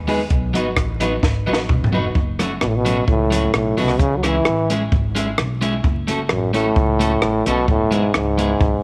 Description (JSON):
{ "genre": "ska", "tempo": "130 BPM", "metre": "4/4", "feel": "straight", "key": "F# dorian", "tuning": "A4 = 439 Hz", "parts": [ { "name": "upright bass", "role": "bass", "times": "0.0-8.8 s", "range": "E1 to D#2", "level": "-26 LUFS", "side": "equal", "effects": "none" }, { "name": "electric guitar at the edge of break-up", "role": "accompaniment", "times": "0.1-8.5 s", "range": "F#3 to A4", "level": "-26 LUFS", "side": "equal", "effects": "slapback echo" }, { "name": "dark upright piano", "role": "stabs", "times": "0.1-2.0 s", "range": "B3 to B4", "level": "-28 LUFS", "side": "equal", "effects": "none" }, { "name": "compact cocktail drum kit", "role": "drums", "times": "0.1-8.7 s", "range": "hi-hat, kick drum, rim click, snare drum, toms", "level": "-23 LUFS", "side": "equal", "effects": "none" }, { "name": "breathy trombone", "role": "melody", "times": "2.6-8.8 s", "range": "F#2 to F#3", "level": "-21 LUFS", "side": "equal", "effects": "none" } ], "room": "light reverb, small room ambience", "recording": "vinyl crackle", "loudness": "-19 LUFS", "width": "mono", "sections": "0.0-2.2 A section; 2.2-8.8 B section", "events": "drum fill 1.2-2.2", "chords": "0.3 B; 2.2 F#m; 4.0 C#m; 5.8 F#m; 7.7 E" }